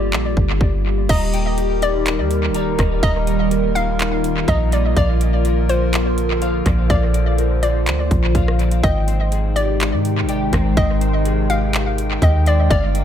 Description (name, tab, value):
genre	hip hop, atmospheric cloud-rap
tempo	124 BPM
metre	4/4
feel	half-time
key	Eb major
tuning	A4 = 438 Hz
part	hollow square pluck	melody	0.0-13.0 s	C5 to F5	-24 LUFS	equal	chorus, tape echo
part	warbly tape-like pad	sustained chords	0.0-13.0 s	C3 to G5	-22 LUFS	equal	chorus, built-in reverb, phaser, sidechain pumping
part	soft 808-style bass	bass	0.0-13.0 s	Eb1 to Ab2	-19 LUFS	equal	none
part	trap drum kit	drums	0.1-13.0 s	crash cymbal, handclaps, hi-hat, kick drum, rim click	-22 LUFS	equal	tape echo
part	electric guitar at the edge of break-up	arpeggios	1.1-13.0 s	Eb4 to Bb5	-28 LUFS	left 8 dB	ensemble chorus, tape echo
room	little or no reverb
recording	echo-heavy mix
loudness	-15 LUFS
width	side -9 dB against mid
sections	0.0-1.1 A section; 1.1-13.0 B section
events	none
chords	0.0 Gm7; 1.1 Eb; 5.0 Bb; 8.8 Abmaj7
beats	0.13 0.61 | 1.09 1.58 2.06 2.54 | 3.03 3.51 4.00 4.48 | 4.96 5.45 5.93 6.42 | 6.90 7.38 7.87 8.35 | 8.84 9.32 9.80 10.29 | 10.77 11.26 11.74 12.22 | 12.71